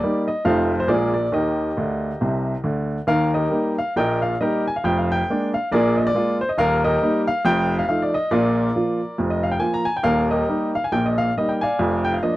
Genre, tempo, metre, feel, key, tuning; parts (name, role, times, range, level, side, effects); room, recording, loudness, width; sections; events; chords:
jazz, stride piano; 138 BPM; 4/4; swing 60% on 8ths; Eb major; A4 = 441 Hz
clear baby grand piano; solo; 0.0-12.4 s; Eb1 to Bb5; -18 LUFS; equal
light reverb; dry, close 1970s-style studio recording; -18 LUFS; side -16 dB against mid
0.0-3.1 A section; 3.1-12.4 A section
grand piano fill 1.8-3.1
0.5 F7; 0.9 Bb7; 1.3 Eb; 4.8 Bb7/F; 5.7 Bb5; 6.6 Eb; 7.4 F7; 8.3 Bb; 10.1 Eb; 11.8 Bb/F